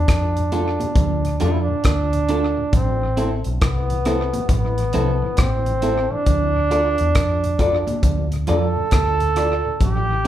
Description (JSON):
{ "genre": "roots reggae", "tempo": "68 BPM", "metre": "4/4", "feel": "swing 63% on 16ths", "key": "unclear", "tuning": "A4 = 440 Hz", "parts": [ { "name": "bright trombone", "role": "melody", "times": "0.0-10.3 s", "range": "B3 to A4", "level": "-22 LUFS", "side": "right 2 dB", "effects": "none" }, { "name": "vintage muted fingered electric bass", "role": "bass", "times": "0.0-10.3 s", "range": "A1 to F2", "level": "-22 LUFS", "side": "equal", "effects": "none" }, { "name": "damped 70s drum kit", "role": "drums", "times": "0.1-10.3 s", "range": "hi-hat, kick drum, rim click", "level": "-21 LUFS", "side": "equal", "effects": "none" }, { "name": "mellow tonewheel organ", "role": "accompaniment", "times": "0.4-10.3 s", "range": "D2 to F4", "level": "-31 LUFS", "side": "left 1 dB", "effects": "slow rotary speaker, tape echo" }, { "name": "electric guitar at the edge of break-up", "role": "accompaniment", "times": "0.5-10.3 s", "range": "C4 to D5", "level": "-24 LUFS", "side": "equal", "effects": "none" }, { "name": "congas", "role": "percussion", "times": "0.8-10.1 s", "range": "none", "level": "-29 LUFS", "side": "right 4 dB", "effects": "none" } ], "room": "moderate large studio reverb, RT60 0.8 s", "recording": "band playing live in one room", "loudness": "-17 LUFS", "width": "side -12 dB against mid", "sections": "0.0-10.3 A section", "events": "none", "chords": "0.0 Dm; 2.7 Am; 6.3 Dm", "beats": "0.08 0.96 1.85 | 2.73 3.62 4.50 5.38 | 6.27 7.15 8.04 8.92 | 9.81" }